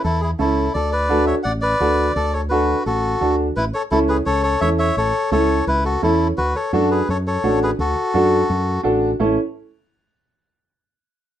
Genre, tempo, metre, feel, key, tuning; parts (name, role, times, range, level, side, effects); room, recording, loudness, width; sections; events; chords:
latin, cumbia; 170 BPM; 4/4; straight; A major; A4 = 439 Hz
melodica; melody; 0.0-8.8 s; E4 to F#5; -20 LUFS; left 2 dB
fingered electric bass; bass; 0.0-9.4 s; A1 to F#2; -22 LUFS; equal
clear upright piano; accompaniment; 0.4-9.4 s; C#4 to A4; -19 LUFS; right 2 dB
light reverb; minimal, uncompressed stereo recording; -16 LUFS; side -11 dB against mid
0.0-3.6 A section; 3.6-9.2 B section; 9.2-10.6 C section
0.0 A; 0.7 D; 3.6 A; 6.4 D; 9.2 A